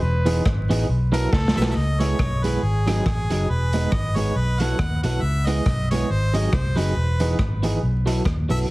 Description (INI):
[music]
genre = ska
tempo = 138 BPM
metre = 4/4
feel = swing 56% on 8ths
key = C# minor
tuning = A4 = 441 Hz
[part]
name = clear trumpet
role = melody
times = 0.0-1.8 s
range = A4 to B4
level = -31 LUFS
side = equal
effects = analog delay
[part]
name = vintage muted fingered electric bass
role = bass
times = 0.0-8.7 s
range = E1 to D#2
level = -22 LUFS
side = equal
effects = none
[part]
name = electric guitar at the edge of break-up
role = accompaniment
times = 0.3-8.6 s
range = E3 to A4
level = -25 LUFS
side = right 2 dB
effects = tremolo
[part]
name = raw garage drum kit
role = drums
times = 0.3-8.6 s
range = hi-hat, kick drum, rim click, snare drum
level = -26 LUFS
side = equal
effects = none
[part]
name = clear harmonica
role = melody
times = 1.6-8.6 s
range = G#4 to F#5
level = -29 LUFS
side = equal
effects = analog delay
[sound]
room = light reverb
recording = heavily compressed radio sound, multiband compression, vinyl crackle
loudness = -19 LUFS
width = side -20 dB against mid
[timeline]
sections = 0.0-1.8 A section; 1.8-8.7 B section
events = trumpet solo 0.0-1.8; drum fill 1.3-1.8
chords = 0.0 Emaj7; 0.9 B7sus4; 1.8 C#m7; 2.6 G#7; 3.5 Emaj7; 4.4 B7sus4; 5.2 C#m7; 6.1 G#7; 7.0 Emaj7; 7.8 B7sus4